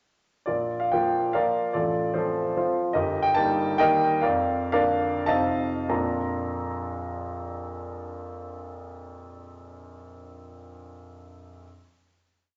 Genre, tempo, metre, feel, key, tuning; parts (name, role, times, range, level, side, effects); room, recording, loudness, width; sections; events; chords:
classical, romantic triple-time dance for piano with dotted rhythms; 91-161 BPM; 3/4; rubato; Bb major; A4 = 441 Hz
clear grand piano; solo; 0.5-11.6 s; G1 to Bb5; -27 LUFS; equal
wet large studio reverb, RT60 1.1 s; nothing above 7.7 kHz; -25 LUFS; mono
0.5-5.9 A section; 5.9-9.5 final chord
slowing down 2.4-5.9
0.5 Bb; 1.8 F/A; 3.0 Eb/G; 3.8 Eb; 4.2 Bb/F; 5.3 F7; 5.9 Bb